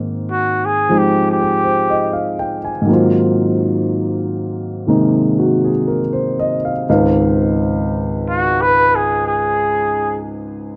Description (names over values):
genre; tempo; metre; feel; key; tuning
jazz ballad; 60 BPM; 4/4; swing 66% on 8ths; Ab major; A4 = 440 Hz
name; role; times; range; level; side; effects
warm concert grand piano; accompaniment; 0.0-10.8 s; Db2 to Ab5; -18 LUFS; equal; none
trumpet with straight mute; melody; 0.3-2.2, 8.3-10.2 s; Gb4 to Cb5; -17 LUFS; equal; none
room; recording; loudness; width
studio reverb; dry, close 1970s-style studio recording; -16 LUFS; mono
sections
0.0-10.8 A section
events
muted trumpet solo 0.0-10.8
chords
0.0 Abmaj7; 2.9 Ab13; 6.9 Dbmaj9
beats
0.89 1.89 | 2.89 3.88 4.88 5.88 | 6.88 7.87 8.87 9.87